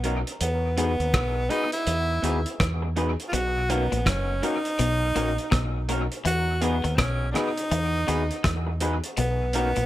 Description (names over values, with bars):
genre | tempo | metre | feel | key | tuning
lovers rock reggae | 82 BPM | 4/4 | swing 62% on 16ths | unclear | A4 = 438 Hz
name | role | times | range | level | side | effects
bright tenor saxophone | melody | 0.0-9.9 s | B3 to F#4 | -28 LUFS | equal | tape echo, plate reverb
overdriven tine electric piano | accompaniment | 0.0-9.7 s | B3 to A#4 | -33 LUFS | left 4 dB | dub echo, plate reverb
electric guitar through a small old amp | stabs | 0.0-9.7 s | F#3 to B4 | -31 LUFS | right 1 dB | plate reverb
deep dub fingered electric bass | bass | 0.0-9.9 s | F#1 to E2 | -27 LUFS | equal | none
cloth-damped thuddy drum kit | drums | 0.0-9.9 s | hi-hat, kick drum, rim click | -29 LUFS | right 1 dB | gated reverb, dub echo
twangy electric guitar | riff | 3.3-9.9 s | F#2 to E3 | -33 LUFS | left 5 dB | none
room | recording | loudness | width
light reverb | none | -23 LUFS | side -14 dB against mid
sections
0.0-9.9 A section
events
none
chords
0.4 Emaj7; 3.3 Bmaj7; 6.3 Emaj7; 9.2 Bmaj7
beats
| 0.41 1.14 1.87 2.60 | 3.33 4.06 4.79 5.52 | 6.25 6.99 7.72 8.45 | 9.18